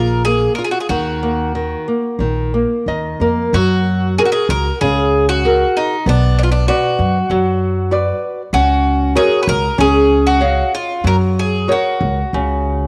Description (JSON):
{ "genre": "fado-style ballad", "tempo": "95 BPM", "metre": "4/4", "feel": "rubato", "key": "Eb minor, F# major from 3.5 s", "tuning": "A4 = 443 Hz", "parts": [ { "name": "Irish bouzouki", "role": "melody", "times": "0.0-12.9 s", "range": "D4 to B4", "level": "-20 LUFS", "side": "equal", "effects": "cassette tape" }, { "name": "nylon-string guitar", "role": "accompaniment", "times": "0.0-12.9 s", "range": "C#3 to E#5", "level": "-20 LUFS", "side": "equal", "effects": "cassette tape" }, { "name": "upright bass", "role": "bass", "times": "0.0-12.9 s", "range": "Bb1 to F#2", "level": "-20 LUFS", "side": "equal", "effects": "none" } ], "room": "light reverb", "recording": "home recording on cassette", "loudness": "-16 LUFS", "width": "mono", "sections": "0.0-3.5 A section; 3.5-12.9 B section", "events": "nylon-string guitar fill 2.5-3.5", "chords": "0.0 Bb5; 0.9 Ebm; 3.5 F#add9; 6.1 Bm; 8.5 F#/C#; 9.8 C#add9; 11.0 F#", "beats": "0.26 | 0.90 1.54 2.19 2.86 | 3.53 4.18 4.81 5.44 | 6.07 6.68 7.30 7.92 | 8.54 9.17 9.79 10.41 | 11.05 11.68 12.33" }